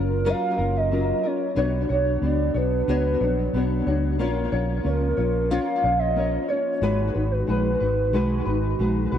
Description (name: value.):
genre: indie pop.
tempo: 91 BPM.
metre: 4/4.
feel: straight.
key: unclear.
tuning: A4 = 445 Hz.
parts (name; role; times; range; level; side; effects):
hollow clarinet-like synth lead; melody; 0.0-8.8 s; A#4 to E#5; -26 LUFS; right 1 dB; wide subtle chorus, tape echo.
nylon-string guitar; accompaniment; 0.0-9.2 s; F#3 to C#5; -26 LUFS; left 3 dB; ensemble chorus, warbly pitch drift, tape echo.
warbly tape-like pad; sustained chords; 0.0-9.2 s; D#3 to F#4; -32 LUFS; equal; chorus, built-in reverb.
vintage muted fingered electric bass; bass; 0.0-9.2 s; F#1 to C#2; -25 LUFS; right 1 dB; none.
room: light reverb, digital ambience.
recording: echo-heavy mix.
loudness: -21 LUFS.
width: side -9 dB against mid.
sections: 0.0-9.2 A section.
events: none.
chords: 0.0 F#maj7; 1.6 Bmadd9; 4.2 A#m; 6.8 G#m7.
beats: 0.26 0.91 | 1.57 2.23 2.89 3.54 | 4.20 4.86 5.51 6.17 | 6.83 7.48 8.14 8.80.